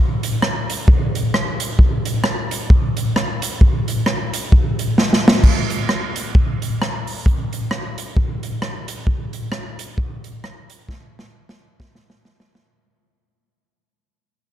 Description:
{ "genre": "ska", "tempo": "132 BPM", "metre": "4/4", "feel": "swing 59% on 8ths", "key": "none", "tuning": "none", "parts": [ { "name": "swinging big-band drum kit", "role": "drums", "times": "0.2-12.7 s", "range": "crash cymbal, hi-hat, kick drum, rim click, snare drum", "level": "-16 LUFS", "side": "equal", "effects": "none" } ], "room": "little or no reverb", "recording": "dark, warm production", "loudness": "-17 LUFS", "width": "side -12 dB against mid", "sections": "0.0-5.4 A section; 5.4-12.7 B section", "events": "drum fill 5.0-5.4, 10.9-12.7; fade-out 5.4-12.7", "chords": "none" }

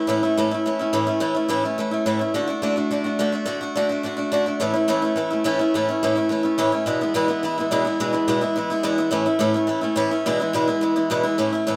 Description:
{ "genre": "rock", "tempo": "212 BPM", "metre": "4/4", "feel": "straight", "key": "A major", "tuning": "A4 = 435 Hz", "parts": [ { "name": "picked swing-style acoustic guitar", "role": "solo", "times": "0.0-11.8 s", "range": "E2 to F#4", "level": "-22 LUFS", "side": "equal", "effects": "none" } ], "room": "moderate studio reverb, RT60 0.9 s", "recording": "band playing live in one room", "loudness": "-22 LUFS", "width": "mono", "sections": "0.0-11.4 A section", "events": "none", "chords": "0.0 A; 2.3 D; 4.6 A; 6.9 E; 9.1 A; 10.3 E" }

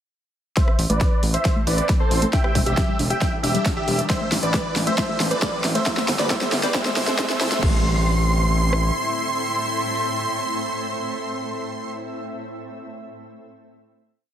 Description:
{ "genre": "uplifting trance", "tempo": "136 BPM", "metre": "4/4", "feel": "straight", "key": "A minor", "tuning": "A4 = 441 Hz", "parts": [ { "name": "big supersaw lead", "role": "melody", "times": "0.6-11.9 s", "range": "G4 to C6", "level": "-25 LUFS", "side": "right 1 dB", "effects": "sidechain pumping, low-pass filter, digital delay" }, { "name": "shimmering ambient pad", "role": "sustained chords", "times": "1.3-11.9 s", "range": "A2 to E5", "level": "-30 LUFS", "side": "equal", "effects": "chorus, built-in reverb, sidechain pumping" }, { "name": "tight sequenced synth", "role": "arpeggios", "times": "0.6-7.8 s", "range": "G3 to C5", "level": "-29 LUFS", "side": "left 3 dB", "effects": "chorus, sidechain pumping, digital delay" }, { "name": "big-room dance drum kit", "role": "drums", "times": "0.6-8.8 s", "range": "kick drum, rim click", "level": "-22 LUFS", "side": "equal", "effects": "overdrive" }, { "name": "big-room dance drum kit", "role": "drums", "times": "0.6-7.7 s", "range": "crash cymbal, hi-hat, rim click, snare drum", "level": "-26 LUFS", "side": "equal", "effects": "overdrive" }, { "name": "riser", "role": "sound effects", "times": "2.9-7.6 s", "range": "none", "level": "-32 LUFS", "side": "right 2 dB", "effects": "none" }, { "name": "gritty driven synth bass", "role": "bass", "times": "0.8-8.9 s", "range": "E1 to A1", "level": "-23 LUFS", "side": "equal", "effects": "sidechain pumping" } ], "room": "light reverb", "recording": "high-pass filter", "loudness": "-19 LUFS", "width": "side -10 dB against mid", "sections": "0.6-7.6 build; 7.6-11.2 final chord", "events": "build-up 0.6-7.6; drum fill 0.6-7.6; filter sweep on supersaw synth 0.6-7.6; filter sweep on synth arpeggio sound 0.6-7.6; filter sweep 0.6-7.6; riser 2.9-7.6", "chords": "0.6 Am; 2.3 Em7; 4.1 Am; 5.9 Gsus4; 7.6 Am" }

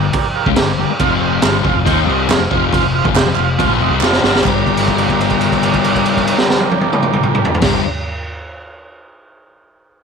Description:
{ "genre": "garage rock duo or trio", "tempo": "139 BPM", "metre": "4/4", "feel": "straight", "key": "G minor", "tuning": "A4 = 441 Hz", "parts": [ { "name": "overdriven combo organ", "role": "sustained chords", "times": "0.0-7.8 s", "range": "F4 to G5", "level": "-19 LUFS", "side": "right 12 dB", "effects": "none" }, { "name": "fuzz guitar", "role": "riff", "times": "0.0-7.8 s", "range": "F2 to Eb4", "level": "-17 LUFS", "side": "left 12 dB", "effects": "distortion" }, { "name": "hollow-body short-scale fingered electric bass", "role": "bass", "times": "0.0-7.8 s", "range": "F1 to Eb2", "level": "-22 LUFS", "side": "right 2 dB", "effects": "none" }, { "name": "raw garage drum kit", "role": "drums", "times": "0.1-7.7 s", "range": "crash cymbal, kick drum, snare drum, toms", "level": "-16 LUFS", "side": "right 2 dB", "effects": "none" }, { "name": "group handclap", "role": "percussion", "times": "1.4-4.6 s", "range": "none", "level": "-25 LUFS", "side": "right 16 dB", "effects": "none" } ], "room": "light reverb, small room ambience", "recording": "1960s-style stereo with parts hard left and right", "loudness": "-12 LUFS", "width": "side -6 dB against mid", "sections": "0.0-4.4 A section; 4.4-7.9 B section", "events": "drum fill 4.0-4.4; held note 4.4-7.6", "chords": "0.0 Gm; 1.0 F5; 4.4 Gm" }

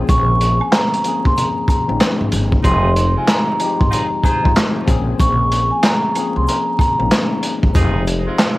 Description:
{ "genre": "hip hop, boom-bap hip-hop", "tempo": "94 BPM", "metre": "4/4", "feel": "swing 63% on 16ths", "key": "unclear", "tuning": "A4 = 440 Hz", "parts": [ { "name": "tine electric piano", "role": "accompaniment", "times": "0.0-8.6 s", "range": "F3 to Ab4", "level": "-23 LUFS", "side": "left 5 dB", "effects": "medium stereo tremolo, cassette tape, high-pass filter, low-pass filter" }, { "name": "vibraphone with soft mallets", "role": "melody", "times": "0.1-7.1 s", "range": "Ab5 to Db6", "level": "-19 LUFS", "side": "right 1 dB", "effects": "high-pass filter, low-pass filter, cassette tape, plate reverb, tape echo" }, { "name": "upright bass", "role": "bass", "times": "0.1-8.2 s", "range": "F1 to C2", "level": "-18 LUFS", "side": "equal", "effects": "none" }, { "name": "crunchy breakbeat drum kit", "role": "drums", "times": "0.1-8.6 s", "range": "handclaps, hi-hat, kick drum, snare drum", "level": "-17 LUFS", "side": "equal", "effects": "vintage 12-bit sampler grit, cassette tape" }, { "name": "egg shaker and woodblock", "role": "percussion", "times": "0.1-8.6 s", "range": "none", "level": "-35 LUFS", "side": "right 10 dB", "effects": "none" }, { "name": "edgy saxophone section", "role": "stabs", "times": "2.6-8.6 s", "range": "Ab3 to C5", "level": "-27 LUFS", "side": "right 1 dB", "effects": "high-pass filter, low-pass filter, cassette tape, plate reverb, tape echo" } ], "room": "light reverb", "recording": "home recording on cassette, vinyl crackle", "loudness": "-14 LUFS", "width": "side -18 dB against mid", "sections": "0.0-8.6 A section", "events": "none", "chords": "0.0 Bbm7; 2.6 Fm7; 4.9 Bbm7; 7.8 Fm7" }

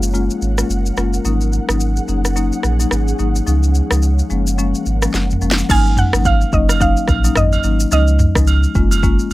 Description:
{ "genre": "afrobeats", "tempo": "108 BPM", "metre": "4/4", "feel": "swing 58% on 16ths", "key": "unclear", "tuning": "A4 = 439 Hz", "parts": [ { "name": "marimba with medium mallets", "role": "accompaniment", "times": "0.0-9.2 s", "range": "F3 to F4", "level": "-21 LUFS", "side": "left 5 dB", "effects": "none" }, { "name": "ethereal airy pad", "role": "sustained chords", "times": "0.0-5.7 s", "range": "Db4 to Gb5", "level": "-29 LUFS", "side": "right 2 dB", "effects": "ensemble chorus, built-in reverb" }, { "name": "warm sub bass", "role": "bass", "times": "0.0-9.3 s", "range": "Gb1 to Db2", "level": "-16 LUFS", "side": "equal", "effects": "none" }, { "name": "afro-pop drum kit", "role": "drums", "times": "0.0-9.3 s", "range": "crash cymbal, kick drum, rim click, shaker, snare drum, toms", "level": "-18 LUFS", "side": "equal", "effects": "none" }, { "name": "mallet-like synth pluck", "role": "melody", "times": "5.7-8.4 s", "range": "Eb5 to Ab5", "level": "-20 LUFS", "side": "right 2 dB", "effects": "chorus" }, { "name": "agogo bells", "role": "percussion", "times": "5.7-9.3 s", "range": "none", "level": "-26 LUFS", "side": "right 8 dB", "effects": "none" } ], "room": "little or no reverb", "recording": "none", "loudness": "-13 LUFS", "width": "side -17 dB against mid", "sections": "0.0-5.7 A section; 5.7-9.3 B section", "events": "drum fill 5.1-5.7", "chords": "0.0 Gbmaj7; 1.3 Ab7sus4; 3.5 Dbadd9; 4.3 Gbmaj7; 5.7 Ab7sus4; 7.9 Dbadd9; 8.8 Gbmaj7" }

